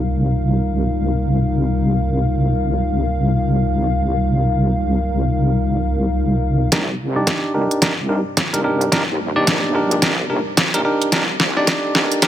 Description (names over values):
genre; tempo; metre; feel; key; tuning
glitch hop; 109 BPM; 4/4; swing 61% on 16ths; C minor; A4 = 440 Hz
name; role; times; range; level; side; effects
dark analog pad; sustained chords; 0.0-12.3 s; G3 to F5; -23 LUFS; left 1 dB; chorus, sidechain pumping
wobble bass; bass; 0.0-12.1 s; Bb1 to Eb2; -19 LUFS; equal; chorus, tube saturation, high-pass filter
bell-like tine electric piano; stabs; 6.7-12.3 s; D4 to D5; -19 LUFS; equal; vintage 12-bit sampler grit, sidechain pumping, low-pass filter, ping-pong delay
dubstep drum kit; drums; 6.7-12.3 s; hi-hat, snare drum; -19 LUFS; equal; none
electronic kick drum; drums; 6.7-12.3 s; none; -23 LUFS; equal; high-pass filter on kick
room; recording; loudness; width
light reverb, digital ambience; high-pass filter; -16 LUFS; side -11 dB against mid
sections
0.0-6.7 A section; 6.7-12.3 B section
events
build-up 6.7-12.3; drum fill 6.7-12.3; filter sweep on tine electric piano 6.7-12.3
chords
0.0 Cm7